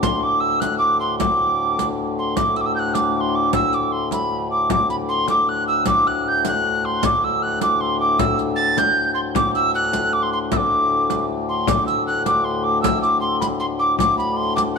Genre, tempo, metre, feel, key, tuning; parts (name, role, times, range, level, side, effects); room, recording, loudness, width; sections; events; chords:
medieval dance; 103 BPM (dotted quarters); 6/8; straight; D mixolydian; A4 = 440 Hz
mellow soprano recorder; melody; 0.0-14.8 s; B5 to A6; -19 LUFS; right 1 dB
hand-pumped harmonium; drone; 0.0-14.8 s; D2 to A2; -24 LUFS; left 4 dB
frame drum; percussion; 0.0-14.8 s; -27 LUFS; left 7 dB
riq; percussion; 0.0-14.8 s; -28 LUFS; right 13 dB
wet echo chamber reverb, RT60 1.9 s, small room reverb; 1960s-style stereo with parts hard left and right; -17 LUFS; side -5 dB against mid
0.0-2.4 A section; 2.4-11.7 B section; 11.7-14.8 B section